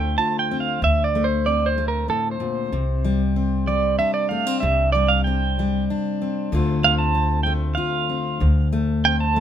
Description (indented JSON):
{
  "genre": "acoustic folk duo or small band",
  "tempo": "95 BPM",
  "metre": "3/4",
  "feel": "straight",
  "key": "D minor",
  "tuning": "A4 = 444 Hz",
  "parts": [
    { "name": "pedal steel guitar", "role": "second line", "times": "0.0-9.4 s", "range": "A4 to A5", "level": "-21 LUFS", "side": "right 4 dB", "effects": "none" },
    { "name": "fingerpicked steel-string acoustic guitar", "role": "accompaniment", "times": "0.0-9.4 s", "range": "D2 to F4", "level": "-24 LUFS", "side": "left 4 dB", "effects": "none" },
    { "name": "upright bass", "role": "bass", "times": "0.0-9.4 s", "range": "C2 to D2", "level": "-22 LUFS", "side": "equal", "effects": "none" }
  ],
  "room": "light reverb",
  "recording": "minimal, uncompressed stereo recording",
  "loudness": "-19 LUFS",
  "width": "side -9 dB against mid",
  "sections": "0.0-9.4 A section",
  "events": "pedal steel guitar solo 0.0-9.4",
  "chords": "0.0 Dm7; 2.7 Csus2; 6.5 Dm7"
}